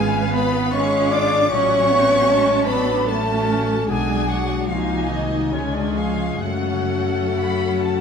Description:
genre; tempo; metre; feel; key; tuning
classical, slow romantic movement for symphony orchestra; 64-78 BPM; 3/4; rubato; F# minor; A4 = 443 Hz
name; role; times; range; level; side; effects
warm studio violin section; melody; 0.0-8.0 s; E#5 to B5; -31 LUFS; left 4 dB; none
bright silver concert flute; second line; 0.0-8.0 s; C#5 to D6; -28 LUFS; left 1 dB; none
dark clarinet; second line; 0.0-8.0 s; F#3 to C#4; -30 LUFS; left 2 dB; none
rich chamber violin section; second line; 0.0-8.0 s; C#5 to D6; -30 LUFS; left 1 dB; none
rich chamber viola section; accompaniment; 0.0-8.0 s; B3 to B4; -27 LUFS; right 1 dB; none
mellow French horn section; sustained chords; 0.0-8.0 s; C#4 to D5; -22 LUFS; left 1 dB; none
concert harp; arpeggios; 0.0-8.0 s; F#2 to D#5; -29 LUFS; left 9 dB; none
rich studio double bass section; bass; 0.0-8.0 s; G#1 to F#2; -27 LUFS; right 3 dB; none
warm chamber cello section; bass; 0.0-8.0 s; C#3 to D4; -25 LUFS; right 3 dB; none
room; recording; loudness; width
wet scoring stage reverb, RT60 2.0 s; none; -17 LUFS; side -6 dB against mid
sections
0.0-8.0 A section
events
none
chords
0.0 C#7/G#; 1.5 F#m/A; 3.9 G#dim/B; 4.7 G#7/B#; 5.5 C#; 6.4 F#m

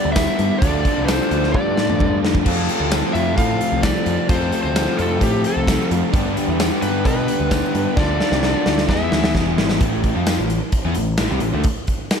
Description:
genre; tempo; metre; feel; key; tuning
classic rock; 130 BPM; 4/4; straight; A minor; A4 = 441 Hz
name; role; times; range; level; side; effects
overdriven slide guitar; melody; 0.0-9.3 s; G4 to F5; -25 LUFS; equal; none
biting overdriven guitar; riff; 0.0-11.6 s; E2 to B4; -24 LUFS; left 12 dB; spring reverb
crunchy overdriven guitar; riff; 0.0-9.8 s; F2 to E4; -24 LUFS; right 1 dB; none
overdriven electric guitar; riff; 0.0-11.6 s; E2 to B4; -27 LUFS; right 14 dB; none
growling picked electric bass; bass; 0.0-11.6 s; E1 to B2; -23 LUFS; equal; overdrive
big rock drum kit; drums; 0.2-12.2 s; crash cymbal, hi-hat, kick drum, snare drum, tambourine, toms; -21 LUFS; equal; none
room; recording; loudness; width
light reverb, small room ambience; none; -16 LUFS; side -6 dB against mid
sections
0.0-9.8 A section; 9.8-12.2 B section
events
drum fill 1.5-2.5, 8.0-9.8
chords
0.0 G; 0.6 Dm; 2.5 F; 6.1 G; 8.0 Dm; 8.9 E; 9.8 Am

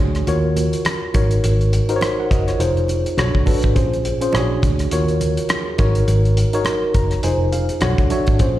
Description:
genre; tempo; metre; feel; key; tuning
lush 1970s-style soul; 103 BPM; 4/4; swing 58% on 16ths; unclear; A4 = 440 Hz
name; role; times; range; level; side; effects
tine electric piano; accompaniment; 0.0-8.6 s; Db4 to Bb5; -21 LUFS; equal; overdrive, fast stereo tremolo, slapback echo
vintage muted fingered electric bass; bass; 0.0-8.6 s; F1 to Eb2; -19 LUFS; equal; none
cloth-damped thuddy drum kit; drums; 0.1-8.6 s; hi-hat, kick drum, rim click; -20 LUFS; equal; none
congas; percussion; 0.6-8.6 s; none; -30 LUFS; right 5 dB; slapback echo
vibraphone with soft mallets; texture; 4.1-7.5 s; Ab4 to Bb4; -32 LUFS; right 2 dB; none
room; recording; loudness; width
studio ambience; live gig heard through the venue's PA, recital hall reverb; -16 LUFS; side -14 dB against mid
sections
0.0-8.6 A section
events
tine electric piano fill 6.7-8.4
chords
0.3 Ebm9; 1.1 Ab7sus4; 2.6 Fm7; 3.2 Bm9; 3.8 Bbm9; 4.3 Bb7alt; 4.9 Ebm9; 5.8 Ab7sus4; 7.2 Fm7; 7.8 Bm9

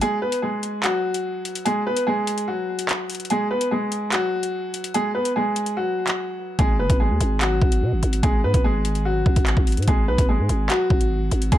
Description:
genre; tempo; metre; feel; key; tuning
hip hop, drill; 146 BPM; 4/4; half-time; G# minor; A4 = 440 Hz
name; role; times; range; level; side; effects
clear upright piano; melody; 0.0-11.6 s; F#3 to B4; -23 LUFS; equal; none
drill drum kit; drums; 0.0-11.6 s; handclaps, hi-hat, kick drum; -22 LUFS; equal; none
growling 808-style bass; bass; 6.6-11.6 s; F#1 to B2; -22 LUFS; equal; none
room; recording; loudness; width
little or no reverb; dark, warm production; -19 LUFS; side -12 dB against mid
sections
0.0-11.6 A section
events
break 0.0-6.6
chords
0.0 G#7(no3)

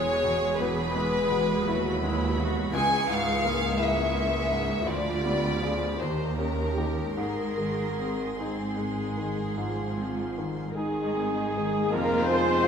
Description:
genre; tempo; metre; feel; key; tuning
classical; 49-58 BPM (dotted quarters); 12/8; rubato; unclear; A4 = 439 Hz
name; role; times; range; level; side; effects
bright baby grand piano; melody; 0.0-12.7 s; Db2 to Ab4; -31 LUFS; left 2 dB; none
rich chamber violin section; melody; 0.0-12.7 s; Eb4 to Db6; -38 LUFS; equal; none
warm chamber violin section; second line; 0.0-12.7 s; F4 to Ab5; -29 LUFS; left 1 dB; none
rich studio viola section; accompaniment; 0.0-12.7 s; Eb3 to C5; -33 LUFS; right 2 dB; none
rich chamber double bass section; bass; 0.0-12.7 s; E1 to F2; -35 LUFS; right 4 dB; none
warm chamber cello section; bass; 0.0-12.7 s; Db2 to C4; -34 LUFS; right 2 dB; none
bright concert flute; second line; 10.8-12.7 s; Ab5 to C6; -34 LUFS; left 1 dB; none
warm clarinet; second line; 10.8-12.7 s; Ab4 to C5; -33 LUFS; left 2 dB; none
dark French horn section; sustained chords; 10.8-12.7 s; Ab3 to C4; -35 LUFS; left 4 dB; none
mellow trumpet; stabs; 10.8-12.7 s; Ab4 to C5; -33 LUFS; right 2 dB; none
mellow cor anglais; second line; 11.9-12.7 s; none; barely audible; none; none
warm bassoon; accompaniment; 11.9-12.7 s; Ab3; -34 LUFS; right 1 dB; none
mellow tuba; bass; 11.9-12.7 s; F1; -35 LUFS; right 5 dB; none
room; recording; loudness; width
moderate scoring stage reverb, RT60 1.6 s; minimal, uncompressed stereo recording; -25 LUFS; side -7 dB against mid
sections
0.0-11.9 A section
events
none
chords
0.0 E; 2.7 Bbm7b5/Db; 4.9 Ddim7; 6.0 Eb7; 7.2 Ab; 11.9 Fm

